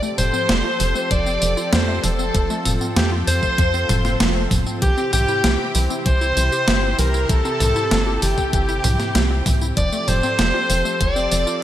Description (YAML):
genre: synthwave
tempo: 97 BPM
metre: 4/4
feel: straight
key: F major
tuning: A4 = 439 Hz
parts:
  - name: warm analog pad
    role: sustained chords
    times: 0.0-11.6 s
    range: C3 to A4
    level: -28 LUFS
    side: equal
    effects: chorus, sidechain pumping
  - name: warbly dusty pluck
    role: arpeggios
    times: 0.0-11.6 s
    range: E3 to G4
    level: -29 LUFS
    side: left 1 dB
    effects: chorus, digital delay
  - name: clean 12-bit digital drum machine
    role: drums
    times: 0.0-11.6 s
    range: hi-hat, snare drum, tambourine, toms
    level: -22 LUFS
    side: right 1 dB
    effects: overdrive, gated reverb
  - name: clear alto saxophone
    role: melody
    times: 0.2-11.6 s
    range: G4 to D5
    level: -23 LUFS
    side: equal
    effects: digital delay
  - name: string machine, violins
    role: second line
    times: 0.2-11.6 s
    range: G4 to D5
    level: -27 LUFS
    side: equal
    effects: ensemble chorus, digital delay
  - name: tight sequencer bass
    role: bass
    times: 0.2-11.5 s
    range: F1 to F2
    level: -21 LUFS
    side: equal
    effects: sidechain pumping
  - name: electronic kick drum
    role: drums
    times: 1.1-11.1 s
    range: none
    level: -21 LUFS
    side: equal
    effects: none
room: moderate lush hall reverb, RT60 2.5 s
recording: bright 1980s-style digital production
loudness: -16 LUFS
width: side -12 dB against mid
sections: 0.0-11.6 A section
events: none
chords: 0.0 Fadd9; 4.8 C; 9.8 Fadd9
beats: 0.49 1.11 1.73 | 2.35 2.96 3.58 4.20 | 4.82 5.44 6.06 6.68 | 7.29 7.91 8.53 9.15 | 9.77 10.39 11.01 11.62